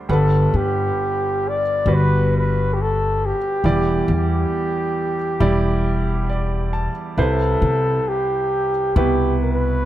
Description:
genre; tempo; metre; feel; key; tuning
acoustic folk-pop ballad; 68 BPM; 4/4; straight; G major; A4 = 441 Hz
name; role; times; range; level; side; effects
clear concert grand piano; accompaniment; 0.0-9.9 s; G1 to A5; -23 LUFS; right 3 dB; none
breathy flugelhorn; melody; 0.1-9.9 s; G4 to D5; -21 LUFS; left 1 dB; slapback echo
upright bass; bass; 0.1-9.9 s; E1 to C3; -19 LUFS; left 1 dB; none
room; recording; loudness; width
little or no reverb; close, detailed microphones; -17 LUFS; side -13 dB against mid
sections
0.1-9.9 A section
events
none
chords
0.1 Gmaj7; 3.6 Em7; 7.2 Cmaj7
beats
| 0.08 0.97 1.86 2.75 | 3.63 4.52 5.40 6.29 | 7.17 8.06 8.95 9.84

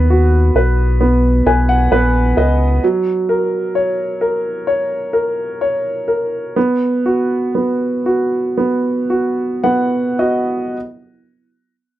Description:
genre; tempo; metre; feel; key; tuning
pop; 53-66 BPM; 4/4; straight; B major; A4 = 440 Hz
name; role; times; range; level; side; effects
clear grand piano; accompaniment; 0.0-10.8 s; F#3 to G#5; -15 LUFS; right 1 dB; none
sub bass with octave; bass; 0.0-2.8 s; A#1 to D#2; -14 LUFS; left 1 dB; none
room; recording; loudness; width
little or no reverb; dry, close 1970s-style studio recording; -14 LUFS; side -13 dB against mid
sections
0.0-10.8 A section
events
grand piano fill 1.0-2.8, 9.1-10.8; slowing down 2.8-10.8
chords
0.0 Badd9; 2.8 F#; 6.6 B5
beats
0.10 1.00 1.92 | 2.82 3.74 4.66 5.60 | 6.56 7.55 8.57 9.64

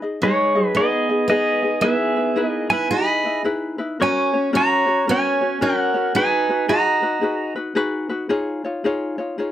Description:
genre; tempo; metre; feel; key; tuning
Hawaiian; 111 BPM; 4/4; swing 63% on 8ths; G# minor; A4 = 440 Hz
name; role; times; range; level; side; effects
ukulele; accompaniment; 0.0-9.5 s; C#4 to D#5; -23 LUFS; left 2 dB; none
pedal steel guitar; melody; 0.2-7.5 s; G#4 to B5; -19 LUFS; right 1 dB; none
picked steel-string acoustic guitar; second line; 0.2-7.5 s; G#3 to G#4; -24 LUFS; right 3 dB; none
room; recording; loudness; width
moderate small room reverb, RT60 0.5 s; none; -18 LUFS; side -12 dB against mid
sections
0.0-9.5 A section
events
none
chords
0.0 G#m; 1.8 Emaj7; 4.0 F#; 6.2 G#m7; 8.3 C#add9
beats
0.22 0.76 1.30 | 1.84 2.38 2.92 3.46 | 4.00 4.54 5.07 5.61 | 6.15 6.69 7.23 7.77 | 8.30 8.84 9.38

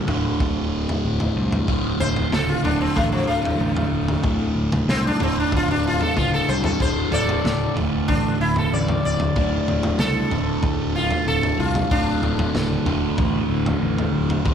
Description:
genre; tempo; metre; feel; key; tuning
psychedelic rock; 94 BPM; 4/4; straight; unclear; A4 = 440 Hz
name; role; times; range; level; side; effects
fuzz guitar; riff; 0.0-14.5 s; D2 to D3; -23 LUFS; right 1 dB; distortion, phaser
fuzz picked electric bass; bass; 0.1-14.5 s; D1 to C2; -26 LUFS; equal; overdrive
crunchy breakbeat drum kit; drums; 0.1-14.5 s; kick drum, snare drum, toms; -25 LUFS; equal; none
sitar; melody; 2.0-13.8 s; F3 to D5; -25 LUFS; left 2 dB; tape echo
room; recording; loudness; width
light reverb, small room ambience; lossy compression artefacts; -19 LUFS; side -8 dB against mid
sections
0.0-14.5 A section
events
sitar solo 0.0-14.5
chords
0.0 D5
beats
0.41 1.05 | 1.69 2.33 2.97 3.61 | 4.25 4.89 5.53 6.17 | 6.81 7.45 8.09 8.72 | 9.36 10.00 10.64 11.28 | 11.91 12.55 13.19 13.82 | 14.46

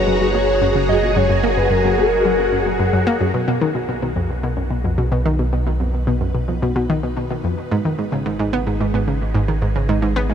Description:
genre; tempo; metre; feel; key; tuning
ambient, sequencer-driven space music; 110 BPM; 4/4; straight; unclear; A4 = 440 Hz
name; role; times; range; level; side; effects
pulse-width lead; melody; 0.0-3.0 s; Bb4 to Eb5; -22 LUFS; equal; chorus, tape echo
string machine, full ensemble; sustained chords; 0.0-10.3 s; D#4 to Bb5; -23 LUFS; equal; phaser, ensemble chorus
analog pluck; riff; 0.0-10.3 s; F2 to Cb4; -20 LUFS; equal; chorus, tape echo
round analog bass; bass; 0.0-10.3 s; Gb1 to B1; -23 LUFS; equal; none
room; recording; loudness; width
moderate huge ambient reverb, RT60 7.9 s; none; -16 LUFS; side -8 dB against mid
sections
0.0-3.3 A section; 3.3-10.3 B section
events
filter sweep on synth arpeggio sound 0.0-3.3; fade-in on string machine 3.3-10.3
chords
0.0 Gbadd9; 3.3 B; 7.7 Abm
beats
0.07 0.62 | 1.16 1.71 2.25 2.80 | 3.35 3.89 4.44 4.98 | 5.53 6.07 6.62 7.16 | 7.71 8.26 8.80 9.35 | 9.89

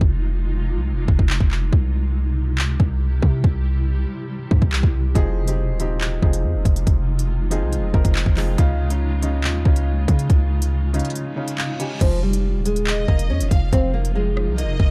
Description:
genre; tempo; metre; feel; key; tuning
hip hop, drill; 140 BPM; 4/4; half-time; F minor; A4 = 440 Hz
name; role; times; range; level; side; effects
granular cloud pad; sustained chords; 0.0-14.9 s; C3 to G4; -32 LUFS; equal; built-in reverb
hard-hitting 808-style bass; bass; 0.0-14.9 s; Eb1 to Db3; -23 LUFS; equal; none
drill drum kit; drums; 0.0-14.9 s; crash cymbal, handclaps, hi-hat, kick drum, rim click; -21 LUFS; equal; none
felt-muted upright piano; accompaniment; 5.1-12.0 s; Db3 to Ab5; -30 LUFS; equal; none
reverse cymbal; sound effects; 11.3-12.0 s; none; -39 LUFS; equal; none
nylon-string guitar; melody; 12.0-14.9 s; F3 to Db4; -27 LUFS; equal; tape echo
rich studio violin section; second line; 12.9-14.9 s; Eb5 to F5; -34 LUFS; equal; tape echo
room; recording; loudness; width
little or no reverb; dark, warm production; -20 LUFS; mono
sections
0.0-12.0 A section; 12.0-14.9 B section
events
break 0.0-5.2, 11.2-12.0; reverse cymbal 11.4-12.0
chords
0.0 Fm7; 1.7 C; 5.2 Fm7; 8.6 Dbadd9; 12.0 Fm7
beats
| 0.01 0.44 0.87 1.30 | 1.73 2.15 2.58 3.01 | 3.44 3.87 4.30 4.72 | 5.15 5.58 6.01 6.44 | 6.87 7.30 7.72 8.15 | 8.58 9.01 9.44 9.87 | 10.30 10.72 11.15 11.58 | 12.01 12.44 12.87 13.30 | 13.72 14.15 14.58

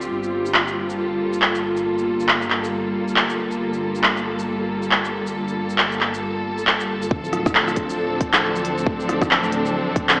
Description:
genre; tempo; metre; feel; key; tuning
future garage; 137 BPM; 4/4; swing 60% on 16ths; G minor; A4 = 440 Hz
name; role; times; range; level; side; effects
rich studio string section; sustained chords; 0.0-10.2 s; D3 to A4; -22 LUFS; equal; vintage 12-bit sampler grit, sidechain pumping, low-pass filter
dark detuned saw bass; bass; 0.0-10.2 s; D1 to G1; -32 LUFS; equal; sidechain pumping
organic electronic drum kit; drums; 0.0-10.2 s; handclaps, hi-hat, rim click, shaker; -19 LUFS; equal; none
electronic kick drum; drums; 7.1-10.1 s; none; -23 LUFS; equal; none
room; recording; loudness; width
wet lush hall reverb, RT60 2.0 s; vinyl crackle, AM radio sound; -18 LUFS; side -28 dB against mid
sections
0.0-7.1 A section; 7.1-10.2 B section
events
filter sweep on string section 0.0-7.1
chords
0.1 Gm9; 7.1 Dm7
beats
| 0.10 0.54 0.98 1.42 | 1.86 2.29 2.73 3.17 | 3.61 4.05 4.48 4.92 | 5.36 5.80 6.24 6.67 | 7.11 7.55 7.99 8.43 | 8.86 9.30 9.74 10.18

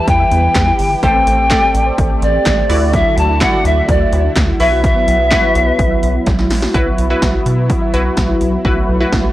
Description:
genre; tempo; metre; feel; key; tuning
synth-pop; 126 BPM; 4/4; straight; unclear; A4 = 445 Hz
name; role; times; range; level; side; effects
bright reedy pan flute; melody; 0.0-6.2 s; D5 to A5; -15 LUFS; left 1 dB; none
funky polysynth comp; accompaniment; 0.0-9.3 s; E4 to D5; -20 LUFS; equal; chorus
warm analog pad; sustained chords; 0.0-9.3 s; D3 to B4; -22 LUFS; equal; chorus
soft round pluck; arpeggios; 0.0-9.3 s; F#3 to G5; -24 LUFS; right 1 dB; chorus, tape echo
rubbery square bass; bass; 0.1-9.3 s; G1 to B2; -17 LUFS; equal; none
80s electronic pad drums; drums; 0.1-9.2 s; handclaps, hi-hat, kick drum, snare drum; -17 LUFS; equal; overdrive
room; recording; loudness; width
little or no reverb; dry, gritty hardware recording, cassette tape; -11 LUFS; side -15 dB against mid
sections
0.0-6.7 A section; 6.7-9.3 B section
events
drum fill 6.3-6.7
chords
0.0 Em; 1.0 Am7; 2.7 Dadd9; 4.6 Bsus4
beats
0.08 0.55 | 1.03 1.51 1.98 2.46 | 2.93 3.41 3.89 4.36 | 4.84 5.32 5.79 6.27 | 6.74 7.22 7.70 8.17 | 8.65 9.12

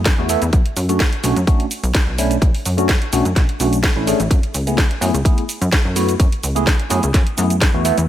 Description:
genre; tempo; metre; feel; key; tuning
filtered disco house; 127 BPM; 4/4; straight; F# minor; A4 = 439 Hz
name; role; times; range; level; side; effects
plucky analog bass; bass; 0.0-8.1 s; A1 to F#2; -20 LUFS; equal; sidechain pumping, low-pass filter
electronic kick drum; drums; 0.1-7.7 s; none; -16 LUFS; equal; none
house drum kit; drums; 0.1-8.1 s; hi-hat, shaker, snare drum; -22 LUFS; equal; sidechain pumping on hats, sidechain pumping on perc, sidechain pumping on cymbals
tine electric piano; accompaniment; 0.2-8.0 s; A3 to A4; -20 LUFS; equal; medium stereo tremolo, phaser, sidechain pumping, low-pass filter
room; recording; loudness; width
light reverb, digital ambience; none; -14 LUFS; side -12 dB against mid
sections
0.0-8.1 A section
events
none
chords
0.0 F#m11; 0.5 Bm9; 4.3 F#m11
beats
0.06 | 0.53 1.00 1.47 1.95 | 2.42 2.89 3.36 3.84 | 4.31 4.78 5.25 5.73 | 6.20 6.67 7.14 7.62

